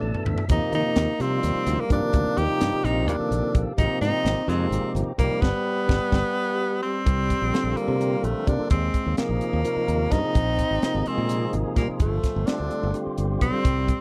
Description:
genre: electric jazz fusion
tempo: 256 BPM (eighths)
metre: 7/8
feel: straight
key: unclear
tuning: A4 = 440 Hz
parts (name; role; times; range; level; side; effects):
- clear tenor saxophone; melody; 0.0-14.0 s; A3 to G4; -29 LUFS; equal; none
- warm trombone; second line; 0.0-14.0 s; F3 to Eb4; -34 LUFS; equal; none
- tonewheel organ; accompaniment; 0.0-13.6 s; B2 to A5; -32 LUFS; equal; overdrive, fast rotary speaker
- modern bright fingered electric bass; bass; 0.0-13.9 s; G1 to Eb3; -28 LUFS; equal; none
- crisp fusion drum kit; drums; 0.1-14.0 s; hi-hat, kick drum, snare drum, toms; -27 LUFS; equal; none
- deep dark ambient pad; sustained chords; 2.0-14.0 s; Bb3 to D6; -41 LUFS; equal; none
room: little or no reverb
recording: dry, close 1970s-style studio recording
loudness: -24 LUFS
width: mono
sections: 0.0-7.1 A section; 7.1-14.0 B section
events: drum fill 0.0-0.5, 6.7-7.1; tonewheel organ fill 0.0-0.5; band accent 5.4-7.1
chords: 0.0 Dsus2; 0.5 Ebmaj9; 3.8 Abmaj9; 5.4 G9; 7.1 C9sus4; 8.7 Eb9sus4; 10.4 Bb9sus4; 12.0 G9sus4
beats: 0.03 0.27 | 0.50 0.74 0.97 1.20 1.44 1.67 1.91 | 2.14 2.38 2.61 2.84 3.08 3.31 3.55 | 3.78 4.02 4.25 4.49 4.72 4.95 5.19 | 5.42 5.66 5.89 6.13 6.36 6.60 6.83 | 7.07 7.30 7.54 7.77 8.01 8.24 8.47 | 8.71 8.94 9.18 9.41 9.65 9.88 10.12 | 10.36 10.59 10.82 11.06 11.29 11.53 11.77 | 12.00 12.24 12.47 12.71 12.94 13.18 13.41 | 13.65 13.88

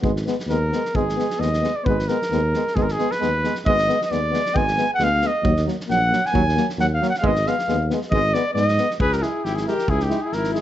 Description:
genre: balkan folk, Balkan brass band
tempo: 134 BPM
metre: 2/4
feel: swing 54% on 16ths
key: Ab dorian sharp4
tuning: A4 = 440 Hz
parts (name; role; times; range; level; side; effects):
- clear trombone; accompaniment; 0.0-10.6 s; Gb3 to Ab3; -28 LUFS; right 6 dB; none
- warm euphonium; accompaniment; 0.0-10.6 s; Bb3 to E4; -27 LUFS; left 7 dB; none
- dark tuba; bass; 0.0-10.6 s; Ab1 to Ab2; -24 LUFS; equal; none
- loose indie drum kit; percussion; 0.0-10.6 s; kick drum, snare drum; -28 LUFS; equal; none
- mellow trumpet; melody; 0.5-10.6 s; G4 to Ab5; -22 LUFS; equal; plate reverb
- warm alto saxophone; second line; 9.0-10.6 s; D#4 to G#4; -26 LUFS; left 5 dB; none
room: moderate studio reverb, RT60 0.6 s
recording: nothing above 7.8 kHz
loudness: -18 LUFS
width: side -12 dB against mid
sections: 0.0-9.0 A section; 9.0-10.6 B section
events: speeding up 0.0-10.6; trumpet solo 0.0-9.0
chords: 0.0 Abm; 5.4 Ebm; 7.2 Abm; 9.0 C#m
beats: | 0.04 0.49 | 0.94 1.40 | 1.85 2.30 | 2.75 3.20 | 3.65 4.10 | 4.55 5.00 | 5.45 5.89 | 6.34 6.78 | 7.22 7.67 | 8.11 8.55 | 8.99 9.43 | 9.87 10.31

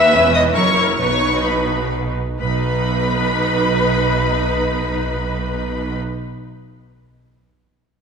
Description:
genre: quick classical-period movement for string orchestra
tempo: 130 BPM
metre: 3/4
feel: rubato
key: B major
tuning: A4 = 441 Hz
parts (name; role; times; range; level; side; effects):
- rich symphonic violin section; melody; 0.0-6.0 s; B5 to E6; -23 LUFS; left 4 dB; none
- warm symphonic violin section; second line; 0.0-6.0 s; B4 to E5; -20 LUFS; left 2 dB; none
- rich symphonic viola section; accompaniment; 0.0-6.0 s; C#4 to B4; -21 LUFS; right 1 dB; none
- rich symphonic cello section; bass; 0.0-6.0 s; D#2 to B2; -24 LUFS; right 3 dB; none
- rich symphonic double bass section; bass; 0.0-6.0 s; E1 to D#2; -24 LUFS; right 3 dB; none
room: wet concert hall reverb, RT60 1.9 s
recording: none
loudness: -16 LUFS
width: side -6 dB against mid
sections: 0.0-2.4 A section; 2.4-5.2 B section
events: slowing down 0.0-2.4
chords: 0.1 C#m7/E; 0.6 F#7; 1.0 B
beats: 0.14 0.56 | 1.00 1.46 1.93 | 2.40 2.87 3.33 | 3.80 4.26 4.73

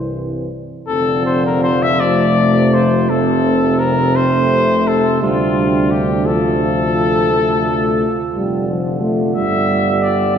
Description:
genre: classical, hymn-like piece for brass band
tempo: 49-61 BPM (dotted quarters)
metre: 12/8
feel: rubato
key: F major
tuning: A4 = 439 Hz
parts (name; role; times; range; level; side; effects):
- mellow cornet; melody; 0.0-10.4 s; F4 to E5; -18 LUFS; left 3 dB; none
- dark French horn section; second line; 0.0-10.2 s; A3 to F4; -20 LUFS; right 3 dB; none
- dark euphonium; accompaniment; 0.0-10.4 s; E3 to A3; -20 LUFS; left 2 dB; none
- warm trombone; accompaniment; 0.0-10.4 s; G2 to D3; -22 LUFS; right 2 dB; none
- mellow tuba; bass; 0.0-10.4 s; F1 to D2; -21 LUFS; equal; none
room: wet concert hall reverb, RT60 2.2 s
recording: recorded in a church or concert hall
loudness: -13 LUFS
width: side -8 dB against mid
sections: 0.9-10.4 A section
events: none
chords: 0.0 C; 0.9 F; 5.2 Dm; 9.4 G5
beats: | 0.88 2.00 3.09 4.15 | 5.22 6.26 7.31 8.36 | 9.35 10.36

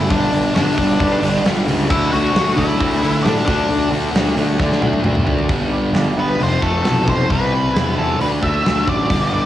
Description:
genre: quiet-loud alternative rock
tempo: 134 BPM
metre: 4/4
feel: straight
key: D major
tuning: A4 = 440 Hz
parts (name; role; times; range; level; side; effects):
- octave-fuzz lead guitar; melody; 0.0-9.5 s; D4 to F#5; -20 LUFS; left 1 dB; distortion, cassette tape
- thick fuzz guitar; riff; 0.0-9.5 s; F2 to D4; -20 LUFS; left 1 dB; distortion
- fuzz fingered electric bass; bass; 0.0-9.5 s; F1 to D3; -20 LUFS; equal; overdrive
- big rock drum kit; drums; 0.1-9.2 s; crash cymbal, hi-hat, kick drum, snare drum, toms; -21 LUFS; equal; cassette tape
- twangy electric guitar; arpeggios; 5.5-9.5 s; F2 to E4; -28 LUFS; right 7 dB; wide subtle chorus
room: light reverb, small room ambience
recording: home recording on cassette, studio reverb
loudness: -14 LUFS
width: side -12 dB against mid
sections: 0.0-5.5 A section; 5.5-9.5 B section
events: drum fill 4.6-5.5; lead electric guitar solo 5.5-9.5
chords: 0.1 G5; 1.9 D; 5.5 G; 6.4 F; 7.3 C; 8.2 D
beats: | 0.12 0.56 1.01 1.46 | 1.91 2.35 2.80 3.25 | 3.70 4.15 4.59 5.04 | 5.49 5.94 6.39 6.84 | 7.30 7.75 8.20 8.65 | 9.10

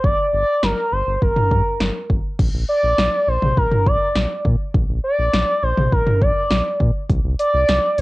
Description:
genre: synth-pop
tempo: 102 BPM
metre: 4/4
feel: straight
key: unclear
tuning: A4 = 440 Hz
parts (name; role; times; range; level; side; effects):
- expressive synth lead; melody; 0.0-8.0 s; Bb4 to D5; -18 LUFS; equal; chorus, cassette tape
- round analog bass; bass; 0.0-8.0 s; G1 to Bb2; -21 LUFS; equal; transformer saturation
- deep house drum kit; drums; 0.0-8.0 s; crash cymbal, hi-hat, kick drum, snare drum, toms; -20 LUFS; equal; overdrive, cassette tape
room: moderate studio reverb, RT60 0.6 s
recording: home recording on cassette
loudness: -16 LUFS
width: side -20 dB against mid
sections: 0.0-2.4 A section; 2.4-8.0 B section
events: none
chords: 0.0 Gm; 2.4 Bb; 7.1 Csus2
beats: | 0.04 0.63 1.22 1.80 | 2.39 2.98 3.57 4.16 | 4.75 5.33 5.92 6.51 | 7.10 7.69

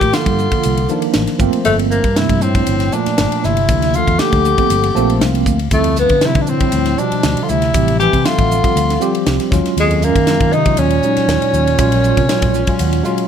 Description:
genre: electric jazz fusion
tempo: 118 BPM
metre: 4/4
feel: straight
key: unclear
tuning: A4 = 440 Hz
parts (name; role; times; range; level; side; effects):
- mellow tenor saxophone; melody; 0.0-13.3 s; Ab3 to G4; -17 LUFS; left 3 dB; none
- warm bass clarinet; second line; 0.0-13.3 s; F2 to E3; -21 LUFS; right 7 dB; none
- tine electric piano; accompaniment; 0.0-13.3 s; D3 to A5; -19 LUFS; right 2 dB; medium stereo tremolo
- fingered electric bass; bass; 0.0-13.0 s; G1 to Eb3; -18 LUFS; equal; none
- crisp fusion drum kit; drums; 0.0-13.3 s; hi-hat, kick drum, ride cymbal, snare drum; -20 LUFS; equal; none
room: light reverb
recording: none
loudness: -12 LUFS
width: side -8 dB against mid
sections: 0.0-13.3 A section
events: tine electric piano fill 4.7-5.7, 12.3-13.3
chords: 0.0 Cm11; 1.4 Gm11; 5.7 Dm11; 9.5 Ebm11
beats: 0.14 0.64 1.15 | 1.66 2.17 2.67 3.18 | 3.69 4.20 4.70 5.21 | 5.72 6.22 6.73 7.24 | 7.75 8.25 8.76 9.26 | 9.77 10.28 10.78 11.29 | 11.79 12.30 12.80

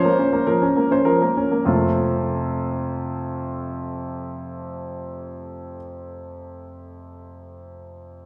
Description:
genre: classical-period piano sonatina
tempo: 100 BPM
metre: 4/4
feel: straight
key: F major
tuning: A4 = 442 Hz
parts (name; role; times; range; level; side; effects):
- clear grand piano; solo; 0.0-8.3 s; F2 to C5; -24 LUFS; equal; none
room: wet recital hall reverb, RT60 1.8 s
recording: heard from further back in the room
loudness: -22 LUFS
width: mono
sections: 0.0-1.7 A section; 1.7-6.5 B section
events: slowing down 0.0-1.7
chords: 0.0 Bbm/F; 1.7 F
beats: 0.48 1.07 | 1.67 2.27 2.87 3.47 | 4.07 4.67 5.27 5.87

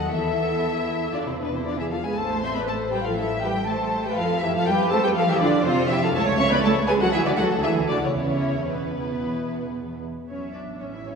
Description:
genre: quick classical-period movement for string orchestra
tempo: 112-124 BPM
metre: 4/4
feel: rubato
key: A minor, A major from 6.2 s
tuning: A4 = 440 Hz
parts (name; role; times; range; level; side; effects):
- muted studio violin section; melody; 0.0-11.2 s; B4 to C#6; -27 LUFS; left 3 dB; none
- muted studio violin section; second line; 0.0-11.2 s; D4 to E5; -27 LUFS; left 2 dB; none
- muted studio cello section; bass; 0.0-11.2 s; B2 to C#4; -28 LUFS; right 3 dB; none
- muted studio double bass section; bass; 0.0-11.2 s; A1 to F2; -30 LUFS; right 2 dB; none
- muted studio viola section; accompaniment; 0.1-11.1 s; B3 to C#5; -28 LUFS; right 2 dB; none
room: wet concert hall reverb, RT60 2.4 s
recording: heard from further back in the room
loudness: -20 LUFS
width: side -5 dB against mid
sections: 0.0-10.3 A section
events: none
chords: 0.1 A5/E; 1.1 E; 2.2 Am; 4.2 F; 6.2 A/C#; 7.1 Dmaj9#11; 8.2 E5; 10.3 A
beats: | 0.11 0.62 1.14 1.66 | 2.17 2.68 3.19 3.69 | 4.19 4.69 5.18 5.67 | 6.16 6.64 7.14 7.64 | 8.17 8.71 9.24 9.77 | 10.30 10.81

